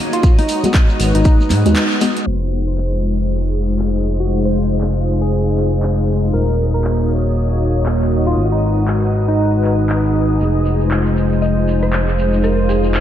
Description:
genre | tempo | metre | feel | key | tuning
deep house | 118 BPM | 4/4 | swing 60% on 16ths | F phrygian | A4 = 440 Hz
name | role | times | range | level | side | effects
hollow soft pad | sustained chords | 0.0-13.0 s | Ab3 to Db5 | -20 LUFS | left 2 dB | chorus, sidechain pumping
deep mellow chord stab | stabs | 0.0-2.2 s | Eb3 to Gb4 | -21 LUFS | left 1 dB | chorus, sidechain pumping, ping-pong delay
ethereal airy pad | texture | 0.0-13.0 s | Eb4 to Gb5 | -26 LUFS | right 1 dB | ensemble chorus, built-in reverb, sidechain pumping
soft string machine | texture | 0.0-13.0 s | Eb5 to Eb6 | -31 LUFS | equal | phaser, ensemble chorus, sidechain pumping
barky tine electric piano | melody | 0.1-10.3 s | Eb4 to C5 | -23 LUFS | equal | analog chorus, tape echo
house drum kit | drums | 0.1-13.0 s | handclaps, hi-hat | -26 LUFS | equal | low-pass filter on hats, low-pass filter on snare, low-pass filter on room
shekere | percussion | 0.1-2.2, 10.4-13.0 s | none | -32 LUFS | right 4 dB | none
electronic kick drum | drums | 0.2-1.4 s | none | -11 LUFS | equal | none
congas | percussion | 0.4-1.6 s | none | -26 LUFS | right 2 dB | none
smooth gliding synth bass | bass | 1.0-13.0 s | Eb1 to Ab2 | -17 LUFS | equal | none
downlifter | sound effects | 2.5-6.3 s | none | -43 LUFS | equal | none
mallet-like synth pluck | melody | 11.4-12.8 s | Ab4 to Eb5 | -23 LUFS | right 2 dB | chorus, tape echo
room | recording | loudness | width
moderate lush hall reverb, RT60 2.4 s | dreamy mix soaked in reverb, vinyl crackle, low-pass filter | -14 LUFS | side -11 dB against mid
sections
0.0-2.3 A section; 2.3-13.0 B section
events
break 1.8-2.3; band accent 1.8; filter sweep on drum 2.3-13.0; filter sweep 2.3-13.0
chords
0.2 Abm7; 2.3 Fm7; 6.3 Ebm7; 8.4 Abm7; 10.4 Fm7

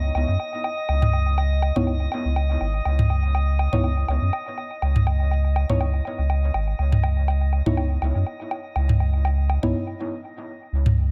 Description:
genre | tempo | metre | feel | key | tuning
dub techno | 122 BPM | 4/4 | swing 55% on 16ths | C# minor | A4 = 440 Hz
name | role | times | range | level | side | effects
warm sub bass | bass | 0.0-11.1 s | G#1 to F#2 | -23 LUFS | equal | tube saturation
drifting glass-harmonics texture | texture | 0.0-9.7 s | D#5 | -35 LUFS | equal | chorus, built-in reverb
electronic woodblock and toms | percussion | 0.1-10.9 s | none | -28 LUFS | equal | dub echo
deep mellow chord stab | stabs | 1.8-9.8 s | B3 to C#5 | -32 LUFS | equal | chorus, phaser, dub echo
room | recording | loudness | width
little or no reverb | none | -22 LUFS | mono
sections
0.0-10.7 A section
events
break 9.7-10.7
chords
0.0 C#m9

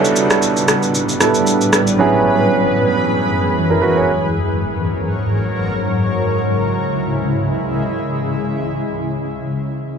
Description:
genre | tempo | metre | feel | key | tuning
amapiano | free time | none | none | unclear | A4 = 438 Hz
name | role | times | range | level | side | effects
warm grand piano | accompaniment | 0.0-4.2 s | F#3 to C#5 | -16 LUFS | right 4 dB | none
granular cloud pad | sustained chords | 0.0-9.4 s | F#2 to C#5 | -17 LUFS | left 1 dB | built-in reverb
electronic shaker and rim click | drums | 0.0-2.0 s | none | -17 LUFS | equal | none
downlifter | sound effects | 0.0-2.0 s | none | -31 LUFS | left 1 dB | none
room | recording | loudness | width
light reverb | none | -15 LUFS | side -6 dB against mid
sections
0.0-6.2 A section; 6.2-10.0 B section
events
none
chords
0.0 A9sus4; 2.0 F#9sus4; 4.1 G#9sus4; 6.2 C#m

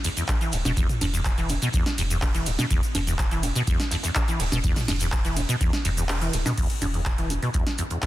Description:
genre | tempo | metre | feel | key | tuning
acid house | 124 BPM | 4/4 | straight | unclear | A4 = 441 Hz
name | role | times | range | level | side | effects
acid bass, saw | riff | 0.0-8.0 s | E2 to E3 | -27 LUFS | equal | ensemble chorus, digital delay
deep reggae drum kit | drums | 0.0-8.1 s | hi-hat, shaker, snare drum | -38 LUFS | equal | sidechain pumping on hats, high-pass filter on hats, high-pass filter on snare, sidechain pumping on perc, high-pass filter on perc, high-pass filter on room
electro analog drum machine | drums | 0.0-8.1 s | cabasa, congas, crash cymbal, handclaps, hi-hat, ride cymbal, snare drum, toms | -28 LUFS | right 1 dB | soft clipping on snare
electronic kick drum | drums | 0.3-8.1 s | none | -25 LUFS | equal | none
warm sub bass | bass | 0.5-7.4 s | D1 to E1 | -29 LUFS | equal | sidechain pumping
room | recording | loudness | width
light reverb, small room ambience | dense, heavily limited modern master | -22 LUFS | side -15 dB against mid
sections
0.0-6.6 A section; 6.6-8.1 B section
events
drop 0.0-6.6; kick drops out 6.1-6.6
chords
none

